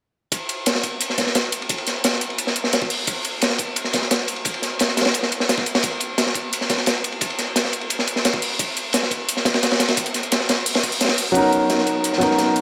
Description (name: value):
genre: liquid drum and bass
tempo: 174 BPM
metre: 4/4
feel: straight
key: unclear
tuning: A4 = 440 Hz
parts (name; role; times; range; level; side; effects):
- crunchy breakbeat drum kit; drums; 0.3-12.6 s; hi-hat, ride cymbal, snare drum; -22 LUFS; equal; high-pass filter on cymbals, high-pass filter on hats, high-pass filter on snare, high-pass filter on room
- electronic hi-hat; drums; 0.3-12.6 s; none; -28 LUFS; equal; overdrive
- electronic kick drum; drums; 0.3-12.3 s; none; -33 LUFS; equal; overdrive, high-pass filter on kick
- clear grand piano; accompaniment; 11.3-12.6 s; F#3 to A#4; -19 LUFS; equal; analog delay
room: moderate cathedral reverb, RT60 5.4 s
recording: none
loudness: -21 LUFS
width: mono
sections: 0.3-12.6 A section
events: kick drops out 11.0-11.4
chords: 0.3 N.C.; 11.4 Bmaj9/F#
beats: | 0.32 0.66 1.01 1.35 | 1.70 2.04 2.39 2.73 | 3.08 3.42 3.77 4.11 | 4.46 4.80 5.15 5.49 | 5.83 6.18 6.53 6.87 | 7.21 7.56 7.90 8.25 | 8.59 8.94 9.28 9.63 | 9.97 10.32 10.66 11.01 | 11.35 11.70 12.04 12.39